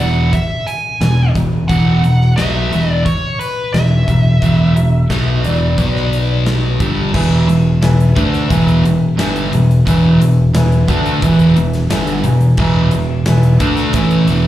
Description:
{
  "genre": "classic rock",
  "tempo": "88 BPM",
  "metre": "4/4",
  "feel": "straight",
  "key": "E mixolydian",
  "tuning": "A4 = 439 Hz",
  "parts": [
    { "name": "nasal lead guitar with a parked wah", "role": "melody", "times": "0.0-6.4 s", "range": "B4 to G#5", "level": "-21 LUFS", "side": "equal", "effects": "overdrive, slapback echo" },
    { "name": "overdriven semi-hollow guitar", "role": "riff", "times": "0.0-14.5 s", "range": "E2 to D4", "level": "-16 LUFS", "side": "right 4 dB", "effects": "none" },
    { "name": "sludgy distorted guitar", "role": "riff", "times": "0.0-14.5 s", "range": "E2 to D4", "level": "-18 LUFS", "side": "left 4 dB", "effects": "overdrive" },
    { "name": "modern bright picked electric bass", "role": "bass", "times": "0.0-14.5 s", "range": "E1 to D2", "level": "-15 LUFS", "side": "equal", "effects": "none" },
    { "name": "huge arena drum kit", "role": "drums", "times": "0.3-14.4 s", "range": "crash cymbal, hi-hat, kick drum, snare drum", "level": "-21 LUFS", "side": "equal", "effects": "none" },
    { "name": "clear upright piano", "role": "accompaniment", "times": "7.1-14.5 s", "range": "B4 to G#5", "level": "-24 LUFS", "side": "left 4 dB", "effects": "slapback echo" }
  ],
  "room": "studio reverb",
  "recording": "live gig heard through the venue's PA, club reverb",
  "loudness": "-11 LUFS",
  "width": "side -13 dB against mid",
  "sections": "0.0-7.1 A section; 7.1-14.5 B section",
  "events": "upright piano fill 11.6-12.6",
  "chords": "0.0 E5; 5.8 B5; 6.8 G5; 7.1 E",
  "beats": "0.33 1.01 | 1.69 2.37 3.06 3.74 | 4.42 5.10 5.78 6.46 | 7.14 7.83 8.51 9.19 | 9.87 10.54 11.22 11.90 | 12.59 13.27 13.95"
}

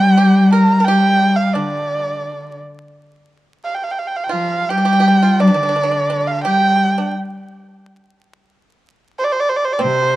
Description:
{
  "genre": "chinese traditional, Chinese chamber ensemble",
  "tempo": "86 BPM",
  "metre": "4/4",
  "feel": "rubato",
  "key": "unclear",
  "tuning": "A4 = 439 Hz",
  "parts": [
    { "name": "dark erhu", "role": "melody", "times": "0.0-10.2 s", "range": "C5 to Bb5", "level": "-17 LUFS", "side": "right 2 dB", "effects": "none" },
    { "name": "pipa", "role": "second line", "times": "0.0-10.2 s", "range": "C4 to Bb4", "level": "-25 LUFS", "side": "right 4 dB", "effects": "none" },
    { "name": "warm cello", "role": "second line", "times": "0.0-10.2 s", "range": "C3 to G3", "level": "-15 LUFS", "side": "left 1 dB", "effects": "none" }
  ],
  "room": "moderate spring reverb, RT60 2.3 s",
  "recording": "close, detailed microphones, vinyl crackle",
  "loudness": "-13 LUFS",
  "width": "side -16 dB against mid",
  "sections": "0.0-10.2 A section",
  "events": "none",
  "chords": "none",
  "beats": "0.18 | 0.86 1.54 2.24 2.94 | 3.65 4.35 5.05 5.75 | 6.45 7.15 7.83 8.51 | 9.19 9.87"
}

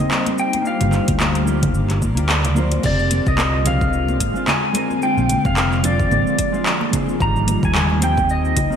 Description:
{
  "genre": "sunset chillout",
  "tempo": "110 BPM",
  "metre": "4/4",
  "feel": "swing 56% on 16ths",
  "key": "F dorian",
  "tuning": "A4 = 440 Hz",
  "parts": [
    { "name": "pedal steel guitar", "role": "melody", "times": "0.0-8.8 s", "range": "D5 to Bb5", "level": "-23 LUFS", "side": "equal", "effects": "lush chorus, ping-pong delay" },
    { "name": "mellow electric guitar", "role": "accompaniment", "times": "0.0-8.8 s", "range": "D3 to C5", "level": "-25 LUFS", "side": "right 1 dB", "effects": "auto-pan, ping-pong delay" },
    { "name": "ethereal airy pad", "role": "sustained chords", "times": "0.0-8.8 s", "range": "C3 to D5", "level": "-25 LUFS", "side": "left 2 dB", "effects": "ensemble chorus, built-in reverb, phaser" },
    { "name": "deep house drum kit", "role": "drums", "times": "0.1-8.8 s", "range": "cabasa, congas, crash cymbal, handclaps, hi-hat", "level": "-22 LUFS", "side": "right 1 dB", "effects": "overdrive, gated reverb" },
    { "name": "congas", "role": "percussion", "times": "0.3-8.7 s", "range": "none", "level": "-30 LUFS", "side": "left 2 dB", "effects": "none" },
    { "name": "fingered electric bass", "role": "bass", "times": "0.8-8.7 s", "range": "F1 to Eb2", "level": "-20 LUFS", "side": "equal", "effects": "tube saturation" },
    { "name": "electronic kick drum", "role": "drums", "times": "1.1-8.7 s", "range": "none", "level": "-24 LUFS", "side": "equal", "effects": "overdrive" }
  ],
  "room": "moderate lush hall reverb, RT60 2.7 s",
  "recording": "bright 1980s-style digital production",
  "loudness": "-16 LUFS",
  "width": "side -8 dB against mid",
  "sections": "0.0-2.8 A section; 2.8-8.8 A section",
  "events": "kick drops out 2.3-2.8",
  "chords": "0.0 Abmaj7 (rootless); 0.7 Gm7; 2.8 Fm69; 5.0 Bb7; 7.2 Abmaj7",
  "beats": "0.11 | 0.66 1.20 1.75 2.29 | 2.84 3.38 3.93 4.48 | 5.02 5.57 6.11 6.66 | 7.20 7.75 8.29"
}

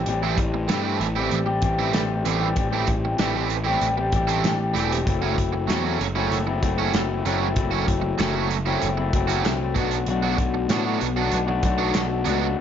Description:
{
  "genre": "indie rock",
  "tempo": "96 BPM",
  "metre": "4/4",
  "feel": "straight",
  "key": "unclear",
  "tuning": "A4 = 440 Hz",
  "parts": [
    { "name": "electric guitar through a small old amp", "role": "riff", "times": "0.0-12.6 s", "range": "A2 to G4", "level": "-25 LUFS", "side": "left 6 dB", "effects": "none" },
    { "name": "fuzz picked electric bass", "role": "bass", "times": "0.0-12.5 s", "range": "E1 to A2", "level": "-26 LUFS", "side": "equal", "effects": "overdrive" },
    { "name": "loose indie drum kit", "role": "drums", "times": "0.1-12.4 s", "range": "hi-hat, kick drum, snare drum", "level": "-27 LUFS", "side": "equal", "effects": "none" },
    { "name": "crunchy overdriven guitar", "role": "riff", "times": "0.2-12.5 s", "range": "E3 to F#4", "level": "-26 LUFS", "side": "right 11 dB", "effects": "analog chorus" },
    { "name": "group handclap", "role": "percussion", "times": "5.7-12.1 s", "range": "none", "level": "-36 LUFS", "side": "left 5 dB", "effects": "none" }
  ],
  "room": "light reverb",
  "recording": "nothing above 7.5 kHz",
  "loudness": "-20 LUFS",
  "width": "side -9 dB against mid",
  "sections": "0.0-12.6 A section",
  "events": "none",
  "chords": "0.0 Am7; 5.1 F#m7b5; 9.8 Bm7",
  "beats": "| 0.09 0.71 1.33 1.96 | 2.58 3.21 3.83 4.45 | 5.08 5.70 6.33 6.95 | 7.57 8.20 8.82 9.45 | 10.07 10.70 11.32 11.94 | 12.57"
}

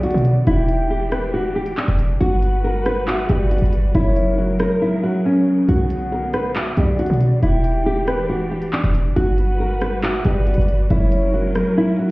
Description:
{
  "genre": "hip hop, drill",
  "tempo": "138 BPM",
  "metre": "4/4",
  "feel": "half-time",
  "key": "unclear",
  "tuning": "A4 = 440 Hz",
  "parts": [
    { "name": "nylon-string guitar", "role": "melody", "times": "0.0-12.1 s", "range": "C#4 to B4", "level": "-21 LUFS", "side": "equal", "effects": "tape echo" },
    { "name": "gliding portamento lead", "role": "second line", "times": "0.0-11.7 s", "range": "C#5 to G5", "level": "-28 LUFS", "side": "equal", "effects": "chorus, phaser, tape echo" },
    { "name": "warm studio string section", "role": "sustained chords", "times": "0.0-12.1 s", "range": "C#3 to B4", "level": "-25 LUFS", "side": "equal", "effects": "none" },
    { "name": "short 808-style bass", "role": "bass", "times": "0.0-11.6 s", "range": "E1 to B2", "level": "-19 LUFS", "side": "equal", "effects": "none" },
    { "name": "drill drum kit", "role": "drums", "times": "0.0-11.7 s", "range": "handclaps, hi-hat, rim click", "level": "-27 LUFS", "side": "equal", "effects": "none" }
  ],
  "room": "light reverb, small room ambience",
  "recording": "heard muffled through a wall, stone room reverb, EQ",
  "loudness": "-16 LUFS",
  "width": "side -21 dB against mid",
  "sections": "0.0-12.1 A section",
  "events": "drums muted 4.8-5.7; kick muted 11.8-12.1",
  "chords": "0.5 Em7; 2.2 Gmaj7; 3.9 F#; 5.7 Bmadd9; 7.4 Em7; 9.2 Gmaj7; 10.9 F#",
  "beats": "0.03 | 0.47 0.90 1.34 1.77 | 2.21 2.64 3.08 3.51 | 3.95 4.38 4.82 5.25 | 5.69 6.12 6.56 6.99 | 7.42 7.86 8.29 8.73 | 9.16 9.60 10.03 10.47 | 10.90 11.34 11.77"
}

